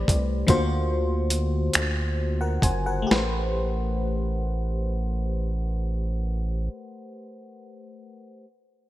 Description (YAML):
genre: slow six-eight R&B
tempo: 42-50 BPM (dotted quarters)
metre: 6/8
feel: straight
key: A minor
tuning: A4 = 444 Hz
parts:
  - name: FM electric piano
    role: accompaniment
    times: 0.0-8.4 s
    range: D3 to G#5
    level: -29 LUFS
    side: left 2 dB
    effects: chorus
  - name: rubbery square bass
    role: bass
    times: 0.0-6.7 s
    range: F#1 to D2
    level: -26 LUFS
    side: equal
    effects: none
  - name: dusty soul sampler-style drum kit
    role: drums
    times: 0.1-3.3 s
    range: finger snaps, hi-hat, kick drum, snare drum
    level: -23 LUFS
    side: equal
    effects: overdrive
room: light reverb, digital ambience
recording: bright 1980s-style digital production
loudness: -23 LUFS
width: side -15 dB against mid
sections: 0.0-3.1 A section; 3.1-5.9 B section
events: slowing down 0.0-3.1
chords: 0.5 D7alt; 3.1 Am9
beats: | 0.48 1.74 | 3.09 4.50